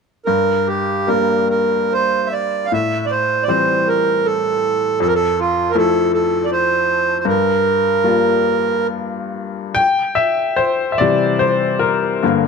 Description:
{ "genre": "celtic folk, Celtic slow air", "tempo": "66-81 BPM", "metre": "3/4", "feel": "rubato", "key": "G dorian", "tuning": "A4 = 440 Hz", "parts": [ { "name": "accordion", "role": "melody", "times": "0.3-8.9 s", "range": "F4 to F5", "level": "-16 LUFS", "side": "right 5 dB", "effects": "none" }, { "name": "bright upright piano", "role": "accompaniment", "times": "0.3-12.5 s", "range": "F2 to G5", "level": "-18 LUFS", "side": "left 5 dB", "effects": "none" } ], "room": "moderate recital hall reverb, RT60 1.8 s", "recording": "close, detailed microphones", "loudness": "-14 LUFS", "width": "side -5 dB against mid", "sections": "0.3-9.8 A section; 9.8-12.5 B section", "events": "upright piano solo 9.8-12.5", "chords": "0.3 Gm; 2.7 Am7; 5.0 Fmaj7; 7.3 Gm7; 9.8 C" }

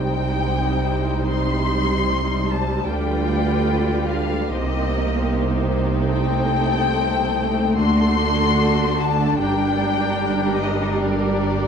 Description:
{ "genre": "classical, slow romantic movement for string orchestra", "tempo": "74 BPM", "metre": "4/4", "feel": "rubato", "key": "G minor from 6.1 s", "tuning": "A4 = 440 Hz", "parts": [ { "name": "warm symphonic violin section", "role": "melody", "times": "0.0-11.7 s", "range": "D5 to C6", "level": "-25 LUFS", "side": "left 6 dB", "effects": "none" }, { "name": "warm symphonic violin section", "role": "second line", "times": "0.0-11.7 s", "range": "Eb4 to C5", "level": "-28 LUFS", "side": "left 4 dB", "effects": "none" }, { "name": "rich chamber viola section", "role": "accompaniment", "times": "0.0-11.7 s", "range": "G3 to F4", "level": "-23 LUFS", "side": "right 1 dB", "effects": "none" }, { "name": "rich symphonic cello section", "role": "bass", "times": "0.0-11.7 s", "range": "G2 to D3", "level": "-26 LUFS", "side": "right 3 dB", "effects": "none" }, { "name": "rich symphonic double bass section", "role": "bass", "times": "0.0-11.7 s", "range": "G1 to D2", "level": "-24 LUFS", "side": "right 2 dB", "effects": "none" } ], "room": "moderate scoring stage reverb, RT60 1.8 s", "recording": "dark, warm production", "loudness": "-18 LUFS", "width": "side -7 dB against mid", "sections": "0.0-11.7 A section", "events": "none", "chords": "0.0 Cm; 2.9 G7/D; 4.5 Cm7; 6.1 Am7b5/C; 7.8 D7; 9.4 Gm" }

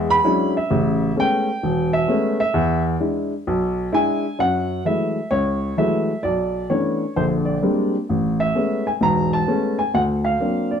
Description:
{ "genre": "solo jazz", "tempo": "130 BPM", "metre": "4/4", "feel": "swing 65% on 8ths", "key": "F# minor from 4.4 s", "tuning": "A4 = 437 Hz", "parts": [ { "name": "dark upright piano", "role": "solo", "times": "0.0-10.8 s", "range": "E1 to B5", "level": "-18 LUFS", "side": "equal", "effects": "none" } ], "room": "moderate large studio reverb, RT60 0.9 s", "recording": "dark, warm production", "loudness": "-18 LUFS", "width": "side -7 dB against mid", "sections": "0.0-4.4 A section; 4.4-10.8 B section", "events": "upright piano solo 0.0-4.4", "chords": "0.0 E13; 0.7 Amaj9; 2.5 E7; 4.4 F#m9; 6.2 Bm11; 7.2 A#13; 8.1 Amaj9; 9.9 D7alt" }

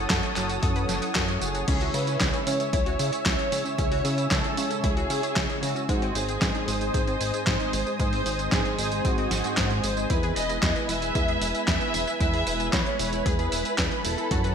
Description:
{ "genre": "italo disco", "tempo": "114 BPM", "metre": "4/4", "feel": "straight", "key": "unclear", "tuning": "A4 = 440 Hz", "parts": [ { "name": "dark studio violin section", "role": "melody", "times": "0.0-14.5 s", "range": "F#4 to E5", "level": "-31 LUFS", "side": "equal", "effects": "ping-pong delay" }, { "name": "warm analog pad", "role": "sustained chords", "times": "0.0-14.5 s", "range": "E4 to E6", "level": "-32 LUFS", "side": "equal", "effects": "chorus" }, { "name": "analog pluck", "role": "arpeggios", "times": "0.0-14.5 s", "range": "G#3 to F#5", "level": "-36 LUFS", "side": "left 4 dB", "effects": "chorus, ping-pong delay" }, { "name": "mellow synth brass", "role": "stabs", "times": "0.0-14.5 s", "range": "G#2 to C#5", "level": "-32 LUFS", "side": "right 3 dB", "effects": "chorus, vintage 12-bit sampler grit" }, { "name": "chorused synth bass", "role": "bass", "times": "0.0-14.5 s", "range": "E1 to C#3", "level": "-30 LUFS", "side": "equal", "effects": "none" }, { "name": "dusty soul sampler-style drum kit", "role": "drums", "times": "0.1-14.5 s", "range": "crash cymbal, handclaps, hi-hat, snare drum, tambourine", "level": "-29 LUFS", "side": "equal", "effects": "gated reverb" }, { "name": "electronic kick drum", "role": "drums", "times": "0.1-14.4 s", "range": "none", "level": "-28 LUFS", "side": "equal", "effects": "overdrive" } ], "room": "moderate lush hall reverb, RT60 2.3 s", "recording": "bright 1980s-style digital production", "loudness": "-23 LUFS", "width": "side -7 dB against mid", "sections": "0.0-14.5 A section", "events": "none", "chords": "0.0 F#m7; 1.7 C#m; 5.9 G#; 10.1 E" }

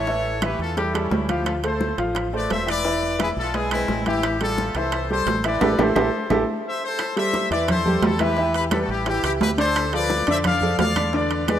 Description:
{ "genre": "latin, salsa", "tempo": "174 BPM", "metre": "4/4", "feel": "straight", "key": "A minor", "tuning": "A4 = 441 Hz", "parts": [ { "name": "bright trumpet section", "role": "melody", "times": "0.0-11.6 s", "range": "C4 to F5", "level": "-25 LUFS", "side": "left 3 dB", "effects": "none" }, { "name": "clear upright piano", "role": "accompaniment", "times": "0.0-11.6 s", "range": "D3 to F5", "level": "-24 LUFS", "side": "right 1 dB", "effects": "none" }, { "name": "deep dub fingered electric bass", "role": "bass", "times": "0.0-11.6 s", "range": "E1 to F2", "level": "-28 LUFS", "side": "equal", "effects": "none" }, { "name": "bongos", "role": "percussion", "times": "0.1-11.6 s", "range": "none", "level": "-32 LUFS", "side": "left 6 dB", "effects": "none" }, { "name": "congas", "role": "percussion", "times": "0.1-11.6 s", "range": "none", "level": "-28 LUFS", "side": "left 1 dB", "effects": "none" }, { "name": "claves", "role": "percussion", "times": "0.4-11.6 s", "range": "none", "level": "-37 LUFS", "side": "right 4 dB", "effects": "none" }, { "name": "timbales", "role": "percussion", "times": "0.4-11.6 s", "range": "none", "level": "-28 LUFS", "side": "right 7 dB", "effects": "none" } ], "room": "moderate lush hall reverb, RT60 2.7 s", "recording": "rough home demo mix", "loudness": "-19 LUFS", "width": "side -10 dB against mid", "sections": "0.0-7.0 A section; 7.0-11.6 B section", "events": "band accent 5.6-7.0", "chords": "0.1 A7; 1.5 Dm9; 2.8 E7; 4.2 Am7; 8.4 Em; 9.1 A7; 9.8 Dm" }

